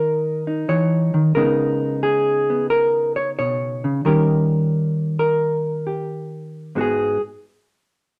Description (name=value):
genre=solo jazz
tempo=89 BPM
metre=4/4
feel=swing 68% on 8ths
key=G# minor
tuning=A4 = 441 Hz
part: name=hollow-body jazz guitar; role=solo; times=0.0-7.2 s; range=G#2 to C#5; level=-20 LUFS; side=equal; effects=none
room=moderate studio reverb, RT60 0.7 s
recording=none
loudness=-20 LUFS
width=mono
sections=0.0-6.8 A section; 6.8-8.2 B section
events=none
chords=0.0 D#5; 1.4 C#sus2; 4.1 D#7; 6.8 G#m7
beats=0.01 0.68 | 1.35 2.03 2.70 3.38 | 4.05 4.73 5.40 6.08 | 6.75